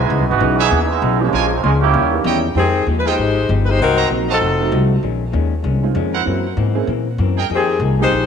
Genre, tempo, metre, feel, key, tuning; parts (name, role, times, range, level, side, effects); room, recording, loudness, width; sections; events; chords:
jazz, big band swing; 194 BPM; 4/4; swing 60% on 8ths; F minor; A4 = 442 Hz
muted trombone section; second line; 0.0-2.2 s; E3 to Ab4; -17 LUFS; right 7 dB
bright trumpet section; stabs; 0.0-7.5 s; Eb4 to Bb5; -24 LUFS; right 7 dB; tape echo
upright bass; bass; 0.0-8.3 s; F1 to Bb2; -18 LUFS; left 1 dB
vintage hollow-body jazz guitar; accompaniment; 0.1-8.3 s; Gb2 to Ab4; -24 LUFS; left 11 dB
warm upright piano; accompaniment; 0.4-8.1 s; Fb3 to G5; -25 LUFS; right 9 dB
warm saxophone section; melody; 2.6-4.9, 7.5-8.3 s; Eb3 to C5; -17 LUFS; left 3 dB
moderate echo chamber reverb, RT60 1.7 s, studio ambience; 1960s-style stereo with parts hard left and right; -14 LUFS; side -7 dB against mid
0.0-2.6 A section; 2.6-8.3 B section
trombone section solo 0.0-2.6
0.1 Dbm9; 1.3 Bbm7; 1.9 Eb7b9; 2.6 Fm9; 3.8 Cm7b5; 4.4 F7b9; 5.0 Bbm11; 6.3 Gb7#11; 7.5 Fm11